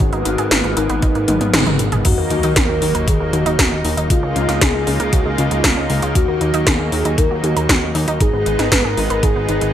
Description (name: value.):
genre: synthwave.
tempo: 117 BPM.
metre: 4/4.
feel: straight.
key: Eb minor.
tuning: A4 = 441 Hz.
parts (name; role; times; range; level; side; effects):
warm velvety synth lead; melody; 0.0-9.7 s; Eb4 to Cb5; -22 LUFS; left 1 dB; chorus, digital delay, shimmer reverb.
lush unison pad; sustained chords; 0.0-9.7 s; Db3 to F4; -23 LUFS; equal; chorus, sidechain pumping, shimmer reverb.
analog pluck; arpeggios; 0.0-9.7 s; Db3 to Cb5; -25 LUFS; right 2 dB; chorus, digital delay, shimmer reverb.
fat analog bass; bass; 0.0-9.7 s; Ab1 to Eb2; -21 LUFS; equal; sidechain pumping.
80s electronic pad drums; drums; 0.0-9.7 s; crash cymbal, hi-hat, snare drum, toms; -18 LUFS; left 1 dB; gated reverb on snare and toms, overdrive.
electronic kick drum; drums; 0.0-9.3 s; none; -17 LUFS; equal; none.
sub drop; sound effects; 2.1-4.1 s; none; -27 LUFS; equal; none.
room: light reverb.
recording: bright 1980s-style digital production.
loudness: -14 LUFS.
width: side -10 dB against mid.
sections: 0.0-2.1 A section; 2.1-9.7 B section.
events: drum fill 1.3-2.1; band accent 1.5; impact 2.1-4.1.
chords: 0.0 Abmadd9; 2.1 Ebm; 4.1 Db6; 6.2 Ebm; 8.2 Abm.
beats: | 0.00 0.51 1.03 1.54 | 2.05 2.56 3.08 3.59 | 4.10 4.62 5.13 5.64 | 6.15 6.67 7.18 7.69 | 8.21 8.72 9.23.